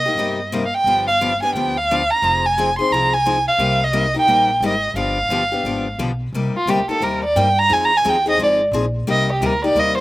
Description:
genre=acoustic string swing (jazz manouche)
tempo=175 BPM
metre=4/4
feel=swing 61% on 8ths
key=C minor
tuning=A4 = 440 Hz
part: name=warm violin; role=melody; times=0.0-10.0 s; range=F4 to C6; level=-17 LUFS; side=right 1 dB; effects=slapback echo
part: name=upright bass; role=bass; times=0.0-10.0 s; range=F1 to G2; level=-26 LUFS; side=equal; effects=none
part: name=picked steel-string acoustic guitar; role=accompaniment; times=0.1-10.0 s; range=C3 to Ab4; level=-23 LUFS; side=left 3 dB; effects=none
room=little or no reverb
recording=recorded outdoors, with no room sound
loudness=-15 LUFS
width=side -17 dB against mid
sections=0.0-6.3 A section; 6.3-10.0 B section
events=violin solo 6.3-10.0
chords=0.0 Cm7; 0.9 G7; 2.2 Fm7; 3.6 Cm7; 5.0 G7; 6.3 Cm7; 7.7 Fm7; 9.1 Cm7

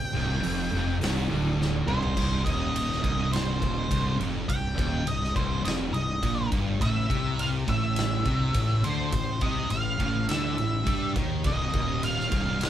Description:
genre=stoner and doom metal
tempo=104 BPM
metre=4/4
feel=straight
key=C dorian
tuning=A4 = 440 Hz
part: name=octave-fuzz lead guitar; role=melody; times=0.0-12.7 s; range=C5 to G5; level=-31 LUFS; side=equal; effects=distortion
part: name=distorted electric guitar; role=riff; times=0.1-12.7 s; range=C2 to G3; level=-34 LUFS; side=equal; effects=overdrive
part: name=thick fuzz guitar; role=riff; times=0.1-12.7 s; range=C2 to G3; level=-32 LUFS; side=left 3 dB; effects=distortion
part: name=thick fuzz guitar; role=riff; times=0.1-12.7 s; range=C2 to G3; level=-32 LUFS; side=right 4 dB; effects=distortion
part: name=fuzz fingered electric bass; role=bass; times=0.2-12.7 s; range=C1 to G2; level=-32 LUFS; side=equal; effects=overdrive
part: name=big rock drum kit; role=drums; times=0.4-12.7 s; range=crash cymbal, hi-hat, kick drum, ride cymbal, snare drum, toms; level=-30 LUFS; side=equal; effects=none
room=moderate small room reverb, RT60 0.5 s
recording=band playing live in one room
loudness=-24 LUFS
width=side -11 dB against mid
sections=0.0-2.2 A section; 2.2-12.7 B section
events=lead electric guitar solo 0.0-2.2; drum fill 1.6-2.2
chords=0.0 C5; 2.2 Cm; 6.8 A5; 11.4 Cm

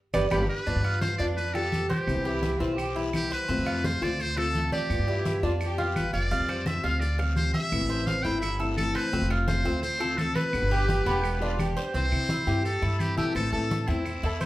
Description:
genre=latin, Cuban son and guajira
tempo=170 BPM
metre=4/4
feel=straight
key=C major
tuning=A4 = 440 Hz
part: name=nylon-string guitar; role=accompaniment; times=0.1-14.5 s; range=B2 to G4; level=-32 LUFS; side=left 2 dB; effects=none
part: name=Cuban tres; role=arpeggios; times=0.1-14.5 s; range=B3 to F5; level=-32 LUFS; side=right 2 dB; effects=none
part: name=upright bass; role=bass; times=0.1-14.5 s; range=E1 to C3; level=-29 LUFS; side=equal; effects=none
part: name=claves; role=percussion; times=0.1-14.5 s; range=none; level=-42 LUFS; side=right 2 dB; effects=none
part: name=congas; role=percussion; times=0.1-14.5 s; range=none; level=-34 LUFS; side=equal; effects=none
part: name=guiro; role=percussion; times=0.1-14.5 s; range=none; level=-46 LUFS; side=left 4 dB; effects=none
part: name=maracas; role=percussion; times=0.1-14.5 s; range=none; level=-49 LUFS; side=right 3 dB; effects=none
part: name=trumpet with metal mute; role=melody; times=0.3-14.5 s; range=E4 to G5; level=-31 LUFS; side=left 1 dB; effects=none
part: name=clear chamber violin section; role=second line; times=2.2-5.9, 10.7-11.9, 14.2-14.5 s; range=E4 to B4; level=-34 LUFS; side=equal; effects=none
room=moderate large studio reverb, RT60 0.8 s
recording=heard from further back in the room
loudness=-24 LUFS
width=side -16 dB against mid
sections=0.7-11.9 A section; 11.9-14.5 B section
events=band accent 0.0-0.7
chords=0.0 G; 0.7 G7; 2.1 Cmaj7; 3.5 F; 4.9 G7; 6.3 Fsus2; 7.7 Am; 9.1 F; 10.5 G; 11.9 C; 13.4 Am

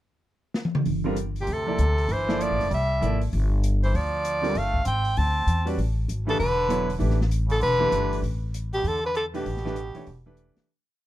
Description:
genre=modal jazz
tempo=195 BPM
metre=4/4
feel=swing 63% on 8ths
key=unclear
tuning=A4 = 439 Hz
part: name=open jazz drum kit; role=drums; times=0.5-10.6 s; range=hi-hat, kick drum, snare drum, toms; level=-32 LUFS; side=equal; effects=none
part: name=upright bass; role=bass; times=0.9-10.6 s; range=E1 to E2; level=-25 LUFS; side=equal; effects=none
part: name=clear grand piano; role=accompaniment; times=1.0-10.7 s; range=D3 to D5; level=-29 LUFS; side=right 2 dB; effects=none
part: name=breathy soprano saxophone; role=melody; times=1.4-10.3 s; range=G4 to A5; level=-26 LUFS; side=equal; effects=plate reverb
part: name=trombone with metal mute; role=second line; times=1.4-10.3 s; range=Bb2 to C4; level=-33 LUFS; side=right 4 dB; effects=none
room=light reverb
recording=close, detailed microphones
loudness=-22 LUFS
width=side -14 dB against mid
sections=0.0-0.8 pickup bar; 0.8-10.7 A section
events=drum fill 0.5-0.8; fade-out 8.7-10.7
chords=0.0 N.C.; 0.8 G13sus4; 5.8 A9sus4

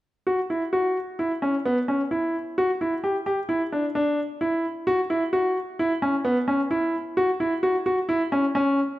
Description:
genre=contemporary instrumental, contemporary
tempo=130 BPM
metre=5/4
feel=straight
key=unclear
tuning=A4 = 439 Hz
part: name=bright concert grand piano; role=arpeggios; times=0.3-8.8 s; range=B3 to G4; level=-22 LUFS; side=equal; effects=none
room=moderate recital hall reverb, RT60 1.5 s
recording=none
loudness=-22 LUFS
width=side -16 dB against mid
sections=0.3-9.0 A section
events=none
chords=none

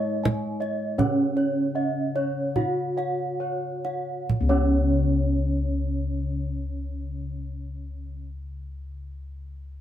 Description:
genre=Javanese gamelan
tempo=33-42 BPM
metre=4/4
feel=straight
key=unclear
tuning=A4 = 440 Hz
part: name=gamelan-type bronze metallophone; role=melody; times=0.0-8.3 s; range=Db4 to Gb4-35c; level=-28 LUFS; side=right 1 dB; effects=none
part: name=gamelan-type bronze metallophone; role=accompaniment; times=0.0-8.3 s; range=Db3 to Ab3+25c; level=-34 LUFS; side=left 4 dB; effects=none
part: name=gamelan-type bossed gongs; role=arpeggios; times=0.0-8.3 s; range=Db5 to Gb5-35c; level=-34 LUFS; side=left 5 dB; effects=none
part: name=gamelan-type bronze metallophone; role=arpeggios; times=0.0-8.3 s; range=Db5 to Ab5+25c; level=-32 LUFS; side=right 5 dB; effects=none
part: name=gamelan-type bossed gongs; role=bass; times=0.0-8.2 s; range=Db2 to Ab4+25c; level=-29 LUFS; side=left 1 dB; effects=none
part: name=kendang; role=percussion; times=0.3-5.2 s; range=none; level=-28 LUFS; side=right 3 dB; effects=none
room=light reverb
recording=band playing live in one room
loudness=-23 LUFS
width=side -10 dB against mid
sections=0.0-4.3 A section; 4.3-9.8 B section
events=slowing down 0.0-4.3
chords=none

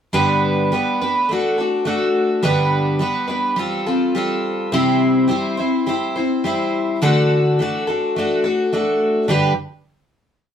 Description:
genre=rock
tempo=105 BPM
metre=4/4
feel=straight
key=G major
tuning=A4 = 441 Hz
part: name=picked twelve-string acoustic guitar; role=solo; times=0.1-9.5 s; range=G2 to C5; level=-16 LUFS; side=equal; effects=none
room=moderate studio reverb, RT60 0.6 s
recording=band playing live in one room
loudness=-16 LUFS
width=side -8 dB against mid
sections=0.1-9.3 verse; 9.3-10.5 final chord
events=none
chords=0.1 G; 1.3 D; 2.4 G; 3.6 Fadd9; 4.7 C; 7.0 D; 9.3 G

